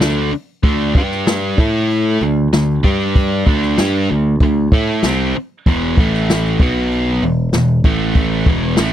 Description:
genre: classic rock.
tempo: 96 BPM.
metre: 4/4.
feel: straight.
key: unclear.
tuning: A4 = 438 Hz.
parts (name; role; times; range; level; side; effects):
overdriven electric guitar; riff; 0.0-8.9 s; E2 to A4; -17 LUFS; equal; none.
modern bright picked electric bass; bass; 0.0-8.9 s; E1 to A2; -19 LUFS; equal; none.
jazz brush drum kit; drums; 0.0-8.9 s; hi-hat, kick drum, snare drum; -14 LUFS; equal; none.
room: little or no reverb.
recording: dry, close 1970s-style studio recording.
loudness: -13 LUFS.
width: side -11 dB against mid.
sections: 0.0-8.9 A section.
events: none.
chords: 0.0 N.C.; 0.6 D5; 1.0 G5; 1.6 A5; 2.2 D5; 2.8 G5; 3.5 D5; 5.7 E5; 6.0 A5; 6.6 B5; 7.2 E5; 7.9 A5.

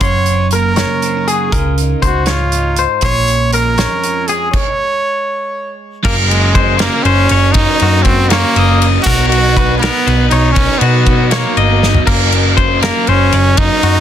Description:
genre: math rock and midwest emo.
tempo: 80 BPM (dotted quarters).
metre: 6/8.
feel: straight.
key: unclear.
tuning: A4 = 439 Hz.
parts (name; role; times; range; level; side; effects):
clear trumpet; melody; 0.0-14.0 s; Ab3 to Db5; -16 LUFS; right 2 dB; plate reverb.
twelve-string electric guitar; accompaniment; 0.0-6.0 s; F2 to Ab4; -22 LUFS; right 9 dB; none.
twangy electric guitar; arpeggios; 0.0-14.0 s; Gb4 to C6; -18 LUFS; left 8 dB; plate reverb.
hollow-body short-scale picked electric bass; bass; 0.0-14.0 s; Gb1 to Cb3; -14 LUFS; equal; none.
loose indie drum kit; drums; 0.0-13.9 s; crash cymbal, hi-hat, kick drum, ride cymbal, snare drum, toms; -16 LUFS; equal; none.
overdriven electric guitar; riff; 6.0-14.0 s; Gb2 to Eb4; -18 LUFS; right 2 dB; none.
room: light reverb.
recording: dense, heavily limited modern master.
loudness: -10 LUFS.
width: side -10 dB against mid.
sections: 0.0-6.1 A section; 6.1-14.0 B section.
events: stop 4.5-6.1; drum fill 11.8.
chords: 0.0 Gb6; 1.5 Dbadd9; 3.0 Bbm7; 4.5 N.C.; 6.1 Gb; 9.1 Cbmaj9; 12.1 Gb.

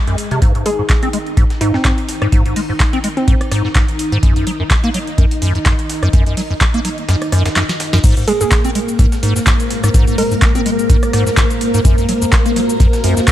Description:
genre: acid house.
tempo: 126 BPM.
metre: 4/4.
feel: swing 55% on 16ths.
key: Ab mixolydian.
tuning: A4 = 439 Hz.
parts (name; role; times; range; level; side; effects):
string machine, full ensemble; sustained chords; 0.0-13.3 s; Ab3 to Bb4; -21 LUFS; equal; ensemble chorus, sidechain pumping.
liquid acid bass; riff; 0.1-13.3 s; Gb2 to C4; -18 LUFS; equal; tube saturation, analog chorus, sidechain pumping, tape echo.
booming analog drum machine; drums; 0.1-13.3 s; crash cymbal, handclaps, hi-hat, rim click, shaker, snare drum; -21 LUFS; equal; none.
breakbeat sampler-style drum kit; drums; 0.2-13.3 s; hi-hat, snare drum; -30 LUFS; equal; high-pass filter on hats, high-pass filter on snare, high-pass filter on room.
electronic kick drum; drums; 0.4-13.3 s; none; -13 LUFS; equal; none.
hollow square pluck; melody; 0.7-3.8, 8.3-10.9 s; C4 to Bb4; -21 LUFS; right 2 dB; chorus, analog delay.
deep dark ambient pad; texture; 8.9-13.3 s; Ab3 to Bb5; -23 LUFS; left 1 dB; chorus, built-in reverb, sidechain pumping.
room: digital ambience.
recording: none.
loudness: -12 LUFS.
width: side -12 dB against mid.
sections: 0.0-8.0 A section; 8.0-13.3 B section.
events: filter sweep on acid bass 0.0-8.0; kick drops out 7.1-8.0; drum fill 7.6-8.0; drop 8.0-13.3.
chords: 0.4 Ab; 4.2 N.C.; 8.0 Abadd9; 11.8 Gbmaj7.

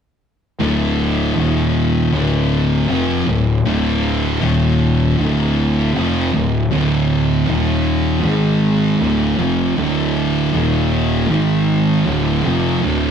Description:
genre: metal.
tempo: 78 BPM.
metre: 4/4.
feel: straight.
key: unclear.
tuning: A4 = 441 Hz.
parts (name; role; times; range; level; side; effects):
thick fuzz guitar; riff; 0.6-13.1 s; D2 to G#3; -18 LUFS; left 6 dB; distortion.
thick fuzz guitar; riff; 0.6-13.1 s; D2 to G#3; -18 LUFS; right 6 dB; distortion.
fuzz fingered electric bass; bass; 0.6-13.1 s; D1 to G#1; -21 LUFS; equal; overdrive.
room: wet studio reverb, RT60 0.5 s.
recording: rough rehearsal-room recording.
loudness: -14 LUFS.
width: side -7 dB against mid.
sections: 0.6-12.8 A section.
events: none.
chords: 0.6 D5; 1.4 Eb5; 2.1 Dm; 4.4 Eb5; 5.2 Dm; 7.5 Eb5; 8.2 G#5; 9.0 Dm; 10.5 Eb5; 11.3 G#5; 12.1 Dm.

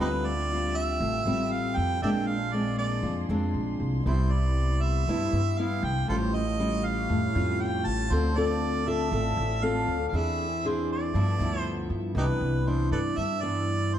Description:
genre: bossa nova.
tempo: 118 BPM.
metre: 4/4.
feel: straight.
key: unclear.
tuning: A4 = 440 Hz.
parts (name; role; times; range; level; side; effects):
warm harmonica; melody; 0.0-14.0 s; Eb4 to A5; -31 LUFS; right 3 dB; none.
nylon-string guitar; accompaniment; 0.0-14.0 s; G2 to A4; -29 LUFS; left 2 dB; none.
warm chamber string section; sustained chords; 0.0-12.1 s; A3 to C6; -38 LUFS; left 1 dB; none.
upright bass; bass; 0.0-14.0 s; A1 to G2; -28 LUFS; equal; none.
room: moderate large studio reverb, RT60 1.3 s.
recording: dark, warm production.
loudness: -25 LUFS.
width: side -10 dB against mid.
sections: 0.0-12.2 A section; 12.2-14.0 B section.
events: none.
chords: 0.0 Dm11; 2.0 Bb9; 4.0 Cmaj7; 6.1 Aaug7; 8.1 Dm7; 10.1 Eaug7; 11.1 G13; 12.2 Cmaj9.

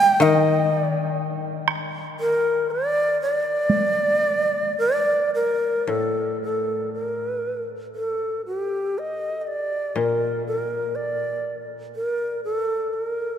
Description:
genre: japanese traditional, Japanese chamber music.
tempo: 54-62 BPM.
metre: 4/4.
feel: rubato.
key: unclear.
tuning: A4 = 440 Hz.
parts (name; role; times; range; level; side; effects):
breathy long shakuhachi; melody; 0.0-13.4 s; G4 to G5; -22 LUFS; right 1 dB; none.
koto; accompaniment; 0.2-12.9 s; A2 to Eb3; -25 LUFS; left 4 dB; none.
solo taiko drums; percussion; 1.7-3.9 s; none; -30 LUFS; right 2 dB; none.
room: wet cathedral reverb, RT60 5.6 s.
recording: minimal, uncompressed stereo recording.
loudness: -21 LUFS.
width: side -9 dB against mid.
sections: 0.0-5.9 A section; 5.9-13.4 B section.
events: none.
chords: none.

